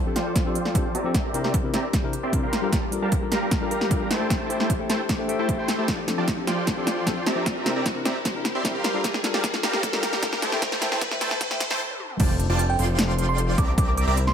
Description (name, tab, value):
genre	future bass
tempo	152 BPM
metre	4/4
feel	half-time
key	F major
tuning	A4 = 440 Hz
part	Celtic harp	arpeggios	0.0-14.3 s	D4 to G5	-34 LUFS	left 7 dB	sidechain pumping, dub echo
part	riser	sound effects	0.1-11.8 s	none	-34 LUFS	equal	none
part	barky tine electric piano	accompaniment	0.1-11.6 s	C3 to G5	-31 LUFS	left 4 dB	overdrive, sidechain pumping, dub echo
part	supersaw chords	riff	0.2-14.2 s	F3 to C6	-28 LUFS	right 2 dB	sidechain pumping, low-pass filter, dub echo
part	big-room dance drum kit	drums	0.2-14.3 s	crash cymbal, hi-hat, snare drum, toms	-27 LUFS	equal	overdrive
part	electronic kick drum	drums	0.4-13.9 s	none	-25 LUFS	equal	overdrive
part	airy dreamy lead	arpeggios	12.2-14.2 s	A5 to C6	-35 LUFS	equal	chorus, sidechain pumping
part	fat analog bass	bass	12.2-14.3 s	F1 to C2	-23 LUFS	equal	sidechain pumping
part	bell-like FM electric piano	melody	12.7-14.3 s	G5 to D6	-28 LUFS	right 4 dB	chorus, cassette tape, sidechain pumping
room	light reverb, digital ambience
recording	high-pass filter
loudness	-21 LUFS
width	side -8 dB against mid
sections	0.0-12.2 A section; 12.2-14.3 B section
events	build-up 0.0-12.2; drum fill 0.0-11.8, 11.9; filter sweep on supersaw synth 0.0-12.2; filter sweep 0.0-12.2; riser 0.1-11.8; stop 11.8-12.2; drop 12.2-14.3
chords	0.0 F6; 1.1 C7; 2.5 Gm7; 4.1 Am7; 5.9 F6; 7.5 C7; 8.8 Gm7; 10.4 Am7; 12.2 F6; 13.8 C7